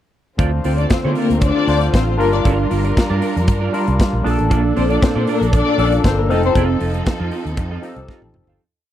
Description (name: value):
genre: disco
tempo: 117 BPM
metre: 4/4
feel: straight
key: unclear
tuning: A4 = 438 Hz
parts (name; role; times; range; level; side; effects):
- barky tine electric piano; accompaniment; 0.4-8.6 s; Bb2 to C5; -23 LUFS; left 4 dB; overdrive, phaser
- clean electric guitar; accompaniment; 0.4-8.6 s; C4 to F5; -24 LUFS; right 8 dB; analog chorus
- dark studio string section; sustained chords; 0.4-8.6 s; D3 to Bb4; -24 LUFS; right 3 dB; none
- fingered electric bass; bass; 0.4-8.6 s; F1 to D3; -19 LUFS; equal; none
- modern studio drum kit; drums; 0.4-8.6 s; hi-hat, kick drum, snare drum, toms; -16 LUFS; equal; none
- dark studio string section; second line; 0.6-6.5 s; A3 to D5; -19 LUFS; left 7 dB; none
room: little or no reverb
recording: dry, close 1970s-style studio recording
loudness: -14 LUFS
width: side -11 dB against mid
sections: 0.4-8.6 pre-chorus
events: fade-out 6.6-8.6; drum fill 8.1-8.6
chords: 0.4 Dm7; 2.2 Gm7; 4.3 Bbmaj7; 6.3 F7